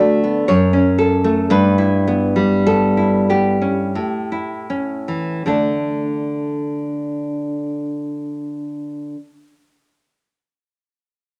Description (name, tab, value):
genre	romantic piece for solo classical guitar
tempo	38-62 BPM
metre	3/4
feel	rubato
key	D major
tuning	A4 = 439 Hz
part	nylon-string guitar	solo	0.0-9.2 s	F#2 to D5	-18 LUFS	equal	none
room	moderate large studio reverb, RT60 1.1 s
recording	none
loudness	-18 LUFS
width	mono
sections	0.0-5.5 A section; 5.5-10.0 B section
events	slowing down 0.0-5.5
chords	0.5 F#m; 1.5 Em/G; 4.0 A7; 5.5 D5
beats	0.47 | 1.50 2.66 3.96 | 5.48 6.99 8.51